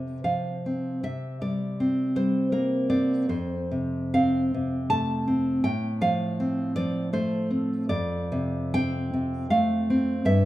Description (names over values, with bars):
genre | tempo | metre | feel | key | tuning
romantic piece for solo classical guitar | 78 BPM | 3/4 | uneven beats, rubato | F major | A4 = 440 Hz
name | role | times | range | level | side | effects
nylon-string guitar | solo | 0.0-10.5 s | F2 to A5 | -23 LUFS | equal | none
room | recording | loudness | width
moderate recital hall reverb, RT60 1.4 s | minimal, uncompressed stereo recording | -24 LUFS | side -15 dB against mid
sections
0.0-10.5 A section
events
none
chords
0.0 F5; 1.0 C5; 3.3 F; 5.6 F/A; 7.9 Dm7/F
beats
0.26 | 1.04 1.80 2.54 | 3.30 4.15 4.91 | 5.65 6.40 7.15 | 7.91 8.75 9.53 | 10.27